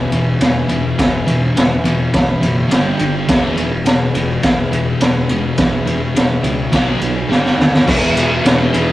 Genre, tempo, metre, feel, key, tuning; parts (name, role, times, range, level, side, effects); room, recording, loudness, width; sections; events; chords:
garage rock duo or trio; 105 BPM; 4/4; straight; E mixolydian; A4 = 441 Hz
combo organ; sustained chords; 0.0-8.9 s; F#4 to B5; -25 LUFS; equal; spring reverb
thick fuzz guitar; riff; 0.0-8.9 s; E2 to B3; -17 LUFS; left 1 dB; distortion
fuzz picked electric bass; bass; 0.0-8.9 s; E1 to D#2; -23 LUFS; equal; overdrive
raw garage drum kit; drums; 0.1-8.9 s; crash cymbal, kick drum, ride cymbal, snare drum; -15 LUFS; equal
moderate studio reverb, RT60 0.6 s; rough rehearsal-room recording, tube saturation, cassette tape; -12 LUFS; side -15 dB against mid
0.0-7.9 A section; 7.9-8.9 B section
transistor combo organ fill 6.1-7.9; drum fill 7.3-7.9
0.0 E; 2.7 G5; 3.3 E; 6.7 B5; 7.3 G5; 7.9 E